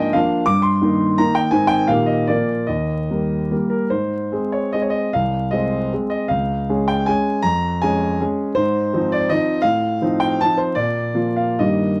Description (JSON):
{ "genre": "classical, romantic triple-time dance for piano with dotted rhythms", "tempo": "126-185 BPM", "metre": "3/4", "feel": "rubato", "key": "Eb major, Ab major from 3.9 s", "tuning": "A4 = 440 Hz", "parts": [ { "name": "warm concert grand piano", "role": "solo", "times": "0.0-12.0 s", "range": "C2 to D6", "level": "-19 LUFS", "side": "equal", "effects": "none" } ], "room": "light reverb", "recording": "close, detailed microphones, vinyl crackle", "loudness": "-19 LUFS", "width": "mono", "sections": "0.0-3.9 A section; 3.9-12.0 B section", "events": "none", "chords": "0.5 Eb/G; 1.5 Ab; 1.9 Eb/Bb; 2.3 Bb; 2.7 Eb; 3.9 Ab; 5.1 Ab/C; 6.3 Db; 7.4 Db/F; 8.5 Fm7/Ab; 9.6 F7/A; 10.8 Bb", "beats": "0.15 | 0.48 0.83 1.19 | 1.52 1.88 2.28 | 2.68 3.09 3.51 | 3.91 4.32 4.73 | 5.11 5.51 5.91 | 6.29 6.69 7.08 | 7.45 7.82 8.20 | 8.54 8.92 9.29 | 9.63 10.01 10.39 | 10.75 11.14 11.59" }